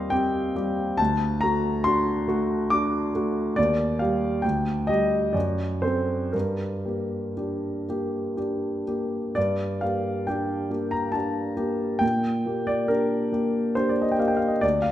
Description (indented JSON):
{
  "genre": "classical, romantic nocturne for solo piano",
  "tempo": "58-72 BPM",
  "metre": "3/4",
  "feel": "rubato",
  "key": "G minor",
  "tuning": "A4 = 440 Hz",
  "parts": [
    { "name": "warm grand piano", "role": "solo", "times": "0.0-14.9 s", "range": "D2 to D6", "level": "-22 LUFS", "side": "equal", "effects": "none" }
  ],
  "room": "moderate recital hall reverb, RT60 1.6 s",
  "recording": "none",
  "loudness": "-23 LUFS",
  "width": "side -12 dB against mid",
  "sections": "0.0-9.4 A section; 9.4-14.9 A section",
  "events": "none",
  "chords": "0.0 Cm/Eb; 1.0 D; 3.6 Ebmaj7; 4.4 G5/D; 5.3 D7/F#; 6.3 Gm; 12.0 Gm/Bb"
}